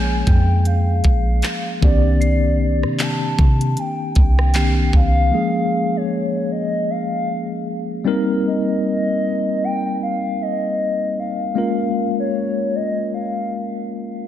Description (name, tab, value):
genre	contemporary R&B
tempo	77 BPM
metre	4/4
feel	swing 58% on 16ths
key	Bb dorian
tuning	A4 = 442 Hz
part	hollow clarinet-like synth lead	melody	0.0-13.9 s	Db5 to A5	-24 LUFS	left 1 dB	chorus, tape echo
part	tine electric piano	accompaniment	0.0-14.3 s	Eb3 to Bb4	-21 LUFS	left 2 dB	fast stereo tremolo
part	soft 808-style bass	bass	0.0-5.3 s	Bb1 to C3	-17 LUFS	equal	none
part	mallet-like synth pluck	texture	0.0-5.7 s	G6 to C7	-35 LUFS	right 2 dB	chorus, tape echo
part	trap drum kit	drums	0.3-5.1 s	handclaps, hi-hat, kick drum, rim click	-18 LUFS	equal	none
room	light reverb, digital ambience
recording	none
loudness	-17 LUFS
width	side -11 dB against mid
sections	0.0-5.3 A section; 5.3-14.3 B section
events	none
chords	0.0 Bbm7; 1.8 Cm9; 5.3 Bbm9; 8.1 Cm7; 11.6 Bbm7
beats	0.66 1.44 | 2.21 2.99 3.77 4.55 | 5.33 6.11 6.89 7.67 | 8.45 9.23 10.01 10.79 | 11.56 12.34 13.12 13.90